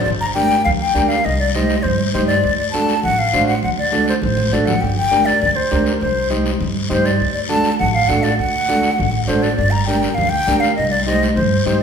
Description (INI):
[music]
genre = latin, cumbia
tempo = 201 BPM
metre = 4/4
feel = straight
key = G harmonic minor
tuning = A4 = 440 Hz
[part]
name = breathy concert flute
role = melody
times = 0.0-11.8 s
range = C5 to Bb5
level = -18 LUFS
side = left 2 dB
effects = none
[part]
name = upright bass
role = bass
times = 0.0-11.8 s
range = G1 to G2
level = -21 LUFS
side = right 1 dB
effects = none
[part]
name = guiro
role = percussion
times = 0.1-11.8 s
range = none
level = -29 LUFS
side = left 4 dB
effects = none
[part]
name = combo organ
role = accompaniment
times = 0.4-11.8 s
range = D4 to C5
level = -22 LUFS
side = right 2 dB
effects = none
[part]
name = congas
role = percussion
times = 0.4-11.8 s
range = none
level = -23 LUFS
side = right 1 dB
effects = none
[sound]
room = wet large studio reverb, RT60 1.3 s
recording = band playing live in one room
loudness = -14 LUFS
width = side -7 dB against mid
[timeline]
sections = 0.1-11.8 A section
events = drum fill 4.4-4.8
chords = 0.1 Gm; 1.2 Cm; 2.4 D7; 4.8 Gm; 6.0 Cm; 7.2 D; 9.6 Gm; 10.8 Cm